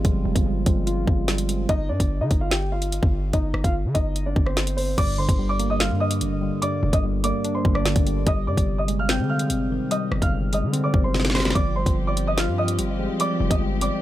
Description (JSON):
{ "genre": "hip hop, drill", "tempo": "146 BPM", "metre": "4/4", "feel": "half-time", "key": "G phrygian", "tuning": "A4 = 435 Hz", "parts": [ { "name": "soft electric-piano-like synth keys", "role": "accompaniment", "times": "0.0-1.7, 5.0-14.0 s", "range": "G2 to F4", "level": "-26 LUFS", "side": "equal", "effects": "chorus" }, { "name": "hard-hitting 808-style bass", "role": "bass", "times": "0.0-13.9 s", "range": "F1 to D3", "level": "-25 LUFS", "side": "equal", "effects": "none" }, { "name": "drill drum kit", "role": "drums", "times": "0.0-13.9 s", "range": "crash cymbal, hi-hat, kick drum, rim click, snare drum", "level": "-22 LUFS", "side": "equal", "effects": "none" }, { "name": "warm baby grand piano", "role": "melody", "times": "1.7-14.0 s", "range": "C4 to G6", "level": "-28 LUFS", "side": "equal", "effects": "ping-pong delay" }, { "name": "dark chamber string section", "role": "sustained chords", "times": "11.6-14.0 s", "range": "F3 to G4", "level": "-32 LUFS", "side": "right 1 dB", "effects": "none" } ], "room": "little or no reverb", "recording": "none", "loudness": "-20 LUFS", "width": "side -14 dB against mid", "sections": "0.0-5.0 A section; 5.0-14.0 B section", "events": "break 0.0-1.7; drum fill 11.1-11.6", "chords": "0.0 Fmadd9; 1.7 Cm/G; 5.0 Gm; 8.3 Ab/G; 11.6 Fmadd9/G" }